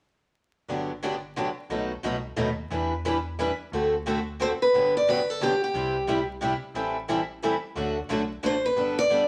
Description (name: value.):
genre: acoustic string swing (jazz manouche).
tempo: 178 BPM.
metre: 3/4.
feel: swing 62% on 8ths.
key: G major.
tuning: A4 = 440 Hz.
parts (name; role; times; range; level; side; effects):
picked steel-string acoustic guitar; accompaniment; 0.7-9.2 s; B2 to B4; -31 LUFS; equal; none.
picked steel-string acoustic guitar; accompaniment; 0.7-9.2 s; B2 to B4; -36 LUFS; equal; none.
metallic FM bass; bass; 0.7-9.3 s; G1 to E2; -41 LUFS; equal; none.
picked steel-string acoustic guitar; melody; 4.4-6.3, 8.5-9.3 s; G4 to D5; -25 LUFS; equal; none.
room: wet studio reverb, RT60 0.7 s.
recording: vinyl crackle.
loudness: -27 LUFS.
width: mono.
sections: 0.7-4.7 A section; 4.7-9.3 B section.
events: none.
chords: 0.7 Gmaj7; 1.7 B7; 2.7 Em7; 3.7 D7; 4.7 Gmaj7; 5.7 C; 6.7 Am7; 7.8 D; 8.8 Gadd9.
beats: | 0.69 1.02 1.36 | 1.70 2.04 2.37 | 2.71 3.05 3.38 | 3.72 4.06 4.39 | 4.73 5.07 5.40 | 5.74 6.07 6.41 | 6.75 7.08 7.42 | 7.76 8.09 8.43 | 8.77 9.10.